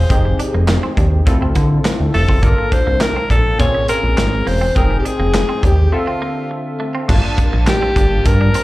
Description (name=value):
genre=early-eighties boogie funk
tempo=103 BPM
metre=4/4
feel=straight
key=unclear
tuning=A4 = 440 Hz
part: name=breathy alto saxophone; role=melody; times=0.0-8.6 s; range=F4 to Db5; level=-20 LUFS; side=left 1 dB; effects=analog delay
part: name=funky polysynth comp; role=accompaniment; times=0.0-8.6 s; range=D3 to A5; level=-23 LUFS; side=left 2 dB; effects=chorus, slapback echo
part: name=clean electric guitar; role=riff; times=0.0-8.6 s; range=A3 to D4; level=-29 LUFS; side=right 5 dB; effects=analog chorus, slapback echo
part: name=fat analog bass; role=bass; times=0.0-8.5 s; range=E1 to D3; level=-15 LUFS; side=equal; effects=none
part: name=modern studio drum kit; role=drums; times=0.1-8.6 s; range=crash cymbal, handclaps, hi-hat, kick drum, snare drum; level=-17 LUFS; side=equal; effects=none
room=little or no reverb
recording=live gig heard through the venue's PA, club reverb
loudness=-13 LUFS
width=side -18 dB against mid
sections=0.0-7.1 A section; 7.1-8.6 B section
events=break 5.9-7.1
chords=0.1 Fm9; 1.3 Dm9; 2.4 Gm9; 3.6 Bbm9; 4.8 Fm9; 5.9 Dm9; 7.1 Gm9